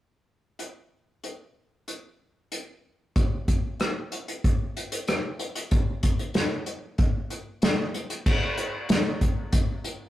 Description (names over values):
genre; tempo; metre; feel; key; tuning
rock; 94 BPM; 4/4; straight; none; none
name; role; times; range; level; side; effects
unplugged drum kit; drums; 0.6-10.0 s; crash cymbal, hi-hat, kick drum, rim click, snare drum; -24 LUFS; equal; none
room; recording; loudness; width
light reverb; rough rehearsal-room recording; -24 LUFS; side -14 dB against mid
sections
0.6-3.2 A section; 3.2-8.3 B section; 8.3-10.1 C section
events
none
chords
none